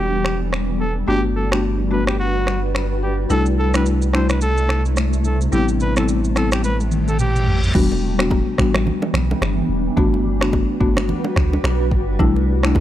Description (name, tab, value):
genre	afrobeats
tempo	108 BPM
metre	4/4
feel	swing 58% on 16ths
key	E minor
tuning	A4 = 437 Hz
part	clear trumpet	melody	0.0-7.6 s	F#4 to C5	-25 LUFS	right 1 dB	analog delay
part	granular cloud pad	sustained chords	0.0-12.8 s	C3 to B4	-25 LUFS	left 1 dB	built-in reverb
part	punchy sub bass	bass	0.0-12.8 s	E1 to D2	-20 LUFS	equal	none
part	afro-pop drum kit	drums	0.2-12.8 s	crash cymbal, finger snaps, kick drum, rim click, shaker, toms	-22 LUFS	equal	none
part	buzzing marimba with medium mallets	accompaniment	1.1-12.8 s	G3 to F#4	-22 LUFS	left 3 dB	none
part	reverse cymbal	sound effects	7.1-7.7 s	none	-30 LUFS	left 1 dB	none
part	congas and bongos	percussion	7.8-12.8 s	none	-26 LUFS	right 3 dB	none
room	little or no reverb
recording	dry, gritty hardware recording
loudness	-16 LUFS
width	side -12 dB against mid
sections	0.0-7.7 A section; 7.7-12.8 B section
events	drum fill 6.6-7.7; reverse cymbal 7.1-7.7; hi-hats muted 7.7-12.8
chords	0.0 Em7; 1.1 Gmaj7; 3.3 C69; 5.5 Am7; 7.7 Em7; 10.0 Gmaj7; 12.2 C69